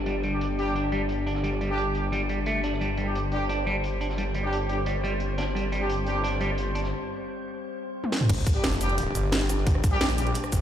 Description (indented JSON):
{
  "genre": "dark technical drum and bass",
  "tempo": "175 BPM",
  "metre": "4/4",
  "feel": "straight",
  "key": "unclear",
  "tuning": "A4 = 440 Hz",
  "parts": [
    { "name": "metallic inharmonic drone", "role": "sustained chords", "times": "0.0-10.6 s", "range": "G3 to C5", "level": "-33 LUFS", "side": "left 2 dB", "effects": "chorus, built-in reverb, sidechain pumping" },
    { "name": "snarling distorted saw bass", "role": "bass", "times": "0.0-10.6 s", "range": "F1 to Bb1", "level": "-29 LUFS", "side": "equal", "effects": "distortion, tube saturation, sidechain pumping" },
    { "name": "downlifter and sub drop", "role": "sound effects", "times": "0.1, 8.3-9.7 s", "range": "none", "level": "-34 LUFS", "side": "equal", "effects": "none" },
    { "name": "semi-hollow electric guitar", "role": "arpeggios", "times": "0.1-6.8 s", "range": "G3 to D4", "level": "-31 LUFS", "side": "right 2 dB", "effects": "spring reverb, sidechain pumping, dub echo" },
    { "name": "crunchy breakbeat drum kit", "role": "drums", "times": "0.1-10.6 s", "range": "hi-hat, snare drum", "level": "-42 LUFS", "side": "equal", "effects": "high-pass filter on hats, low-pass filter on hats, studio ambience, high-pass filter on snare, low-pass filter on snare, high-pass filter on room, low-pass filter on room" },
    { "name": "mellow brass ensemble", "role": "stabs", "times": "0.3-6.2, 8.6-10.3 s", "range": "G3 to G4", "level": "-32 LUFS", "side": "equal", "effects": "dub echo" },
    { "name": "drum and bass drum kit", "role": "drums", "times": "8.0-10.6 s", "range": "crash cymbal, hi-hat, rim click, shaker, snare drum, toms", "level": "-27 LUFS", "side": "equal", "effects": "overdrive, low-pass filter on hats, studio ambience, low-pass filter on snare, low-pass filter on perc, low-pass filter on cymbals, low-pass filter on toms" },
    { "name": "electronic kick drum", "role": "drums", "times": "8.3-10.6 s", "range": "none", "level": "-24 LUFS", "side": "equal", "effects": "overdrive, studio ambience" }
  ],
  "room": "moderate plate reverb, RT60 1.6 s",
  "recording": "played on a big sound system in a bare room, stone room reverb",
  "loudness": "-24 LUFS",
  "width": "side -10 dB against mid",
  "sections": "0.0-8.3 A section; 8.3-10.6 B section",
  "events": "break 6.9-8.3; drum fill 8.0; drop 8.3-10.6; impact 8.3-9.7",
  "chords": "0.0 G5"
}